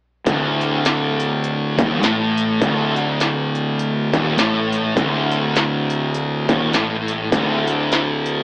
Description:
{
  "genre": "stoner and doom metal",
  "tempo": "102 BPM",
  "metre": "4/4",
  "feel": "swing 59% on 8ths",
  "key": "unclear",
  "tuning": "A4 = 439 Hz",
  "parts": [
    { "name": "thick fuzz guitar", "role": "riff", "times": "0.3-8.4 s", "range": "D2 to A2", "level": "-21 LUFS", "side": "left 1 dB", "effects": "distortion" },
    { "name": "thick fuzz guitar", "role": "riff", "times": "0.3-8.4 s", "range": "D2 to A2", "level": "-22 LUFS", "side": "right 1 dB", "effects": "distortion" },
    { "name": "fuzz fingered electric bass", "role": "bass", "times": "0.3-8.4 s", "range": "D1 to A1", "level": "-24 LUFS", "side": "equal", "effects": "overdrive" },
    { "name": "industrial drum kit", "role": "drums", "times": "0.3-8.4 s", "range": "hi-hat, kick drum, snare drum", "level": "-20 LUFS", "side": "equal", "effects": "distortion" }
  ],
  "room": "light reverb",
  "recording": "band playing live in one room, AM radio sound, faint mains hum",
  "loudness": "-16 LUFS",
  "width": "side -24 dB against mid",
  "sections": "0.3-8.4 A section",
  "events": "none",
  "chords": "0.3 D5",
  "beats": "| 0.27 0.85 1.44 2.03 | 2.61 3.20 3.79 4.38 | 4.97 5.55 6.14 6.73 | 7.32 7.91"
}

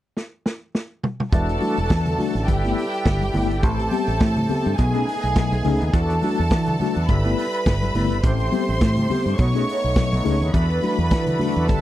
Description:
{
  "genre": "disco",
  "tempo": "104 BPM",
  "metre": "4/4",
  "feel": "swing 56% on 16ths",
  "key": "unclear",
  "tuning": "A4 = 439 Hz",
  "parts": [
    { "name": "vintage drum kit", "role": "drums", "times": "0.2-11.8 s", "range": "hi-hat, kick drum, snare drum, toms", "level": "-21 LUFS", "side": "equal", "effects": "none" },
    { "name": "clear studio string section", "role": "second line", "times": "1.3-11.8 s", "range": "G4 to C#6", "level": "-26 LUFS", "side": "right 1 dB", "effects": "none" },
    { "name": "mellow tine electric piano", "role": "accompaniment", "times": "1.3-11.8 s", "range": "G2 to G#4", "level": "-25 LUFS", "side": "left 4 dB", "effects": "medium stereo tremolo" },
    { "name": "overdriven tonewheel organ", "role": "sustained chords", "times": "1.3-11.8 s", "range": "E3 to B4", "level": "-28 LUFS", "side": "right 1 dB", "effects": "chorus vibrato, slow rotary speaker" },
    { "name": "fingered electric bass", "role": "bass", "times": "1.3-11.8 s", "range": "E1 to E3", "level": "-22 LUFS", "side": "right 1 dB", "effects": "none" },
    { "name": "congas", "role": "percussion", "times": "1.3-11.5 s", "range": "none", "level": "-29 LUFS", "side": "left 2 dB", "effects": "none" }
  ],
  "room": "little or no reverb",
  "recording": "dry, close 1970s-style studio recording",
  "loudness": "-18 LUFS",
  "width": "side -13 dB against mid",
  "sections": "0.0-1.3 A section; 1.3-11.8 B section",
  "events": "drum fill 0.2-1.3",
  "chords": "0.0 N.C.; 1.3 E9sus4; 2.5 G69; 3.6 Am9; 4.8 B13; 5.9 E9sus4; 7.1 G69; 8.2 Am9; 9.4 B13; 10.5 E9sus4",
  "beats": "0.17 0.74 | 1.32 1.90 2.48 3.05 | 3.63 4.21 4.78 5.36 | 5.94 6.51 7.09 7.66 | 8.24 8.81 9.39 9.96 | 10.54 11.11 11.69"
}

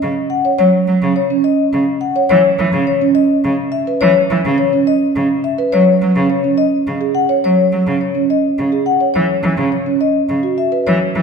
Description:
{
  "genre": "classical, minimalist pattern music",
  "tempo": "105 BPM",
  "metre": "3/4",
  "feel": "straight",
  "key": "C# minor",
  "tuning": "A4 = 440 Hz",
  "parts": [
    { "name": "rich cello", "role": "accompaniment", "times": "0.0-11.2 s", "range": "C#3 to F#3", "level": "-17 LUFS", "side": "right 2 dB", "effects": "none" },
    { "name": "vibraphone with medium mallets", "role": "melody", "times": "0.3-11.1 s", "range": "C#5 to F#5", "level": "-17 LUFS", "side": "left 9 dB", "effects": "none" },
    { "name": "marimba with soft mallets", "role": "arpeggios", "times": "0.4-10.9 s", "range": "C#4 to C#5", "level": "-17 LUFS", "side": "right 5 dB", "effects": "none" }
  ],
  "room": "wet recital hall reverb, RT60 1.4 s",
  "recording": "dark, warm production",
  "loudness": "-12 LUFS",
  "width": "side -5 dB against mid",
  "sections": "0.0-11.2 A section",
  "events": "none",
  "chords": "0.0 N.C.; 2.3 C#m7; 5.7 G#5/C#; 9.2 C#m7",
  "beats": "0.01 | 0.58 1.16 1.73 | 2.30 2.87 3.44 | 4.01 4.58 5.16 | 5.73 6.30 6.87 | 7.44 8.01 8.59 | 9.16 9.73 10.30 | 10.87"
}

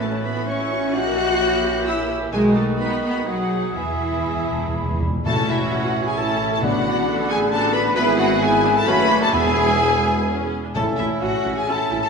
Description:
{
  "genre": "classical, dramatic, fast romantic movement for symphony orchestra",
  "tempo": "118-135 BPM",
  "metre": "3/4",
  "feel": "rubato",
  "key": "E major, A major from 5.3 s",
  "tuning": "A4 = 441 Hz",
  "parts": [
    { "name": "warm symphonic violin section", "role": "melody", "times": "0.0-12.1 s", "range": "E5 to F#6", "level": "-27 LUFS", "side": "left 4 dB", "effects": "none" },
    { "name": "clear oboe", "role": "second line", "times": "0.0-12.1 s", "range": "F#4 to E5", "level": "-30 LUFS", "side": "right 2 dB", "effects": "none" },
    { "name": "mellow hollow concert flute", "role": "second line", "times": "0.0-12.1 s", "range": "B4 to B5", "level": "-27 LUFS", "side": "left 2 dB", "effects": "none" },
    { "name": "warm clarinet", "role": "second line", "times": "0.0-12.1 s", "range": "E4 to F#5", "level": "-28 LUFS", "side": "left 2 dB", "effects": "none" },
    { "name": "warm symphonic violin section", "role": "second line", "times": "0.0-12.1 s", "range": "E4 to F#6", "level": "-29 LUFS", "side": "left 2 dB", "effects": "none" },
    { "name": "warm bassoon", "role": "accompaniment", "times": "0.0-12.1 s", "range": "D3 to C#4", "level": "-28 LUFS", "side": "right 2 dB", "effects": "none" },
    { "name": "warm symphonic viola section", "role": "accompaniment", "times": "0.0-12.0 s", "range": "A3 to A#4", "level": "-28 LUFS", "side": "right 2 dB", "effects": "none" },
    { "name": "mellow French horn section", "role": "sustained chords", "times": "0.0-10.9 s", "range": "E3 to F#4", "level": "-27 LUFS", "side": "left 4 dB", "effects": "none" },
    { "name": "rich symphonic cello section", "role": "bass", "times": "0.0-12.1 s", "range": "E3 to A4", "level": "-26 LUFS", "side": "right 2 dB", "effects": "none" },
    { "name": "rich symphonic double bass section", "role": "bass", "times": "0.0-12.0 s", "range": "E1 to E2", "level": "-30 LUFS", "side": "right 3 dB", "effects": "none" },
    { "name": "timpani", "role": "percussion", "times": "2.3-11.4 s", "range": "E2 to B2", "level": "-28 LUFS", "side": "left 2 dB", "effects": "none" },
    { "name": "warm trombone section", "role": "sustained chords", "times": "5.3-10.9 s", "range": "C#3 to B3", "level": "-32 LUFS", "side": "right 3 dB", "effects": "none" },
    { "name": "mellow tuba", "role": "bass", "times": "5.3-12.0 s", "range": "E1 to A1", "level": "-28 LUFS", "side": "right 3 dB", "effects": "none" }
  ],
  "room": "wet scoring stage reverb, RT60 1.6 s",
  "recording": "none",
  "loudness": "-18 LUFS",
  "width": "side -5 dB against mid",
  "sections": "0.0-5.3 A section; 5.3-12.1 B section",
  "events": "timpani fill 3.8-5.3",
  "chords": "0.0 F#m7/A; 0.9 A#dim7; 2.3 B; 3.3 B6; 3.8 E; 5.3 A; 6.6 Bm7/A; 8.0 E/G#; 8.9 F#m; 9.3 E; 10.8 A",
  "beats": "0.02 0.47 | 0.95 1.41 1.88 | 2.33 2.80 3.27 | 3.76 4.26 4.76 | 5.26 5.72 6.18 | 6.63 7.07 7.52 | 7.96 8.41 8.87 | 9.34 9.82 10.29 | 10.75 11.22 11.68"
}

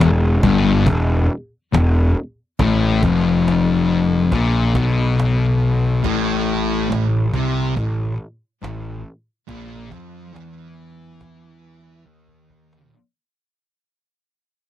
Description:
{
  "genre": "stoner and doom metal",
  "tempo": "70 BPM",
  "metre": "4/4",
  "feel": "straight",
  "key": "unclear",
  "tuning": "A4 = 439 Hz",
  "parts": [
    { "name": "thick fuzz guitar", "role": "riff", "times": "0.0-12.9 s", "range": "E2 to F3", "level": "-17 LUFS", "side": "left 3 dB", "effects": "distortion" },
    { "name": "fuzz picked electric bass", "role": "bass", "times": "0.0-12.9 s", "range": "E1 to F2", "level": "-21 LUFS", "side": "equal", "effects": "overdrive" },
    { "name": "cajon", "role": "drums", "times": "0.0-12.9 s", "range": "none", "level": "-23 LUFS", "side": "equal", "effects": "none" },
    { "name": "thick fuzz guitar", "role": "riff", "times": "6.0-12.9 s", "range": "A2 to F3", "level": "-27 LUFS", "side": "right 8 dB", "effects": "distortion" }
  ],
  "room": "little or no reverb",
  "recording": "dry, close 1970s-style studio recording, lossy compression artefacts",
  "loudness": "-15 LUFS",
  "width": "side -12 dB against mid",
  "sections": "0.0-12.9 A section",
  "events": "fade-out 0.0-12.9; drum fill 12.1-12.9",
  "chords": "0.0 Em; 6.0 A5",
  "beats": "0.00 0.87 1.73 | 2.60 3.46 4.32 5.18 | 6.04 6.91 7.77 8.63 | 9.48 10.34 11.20 12.06"
}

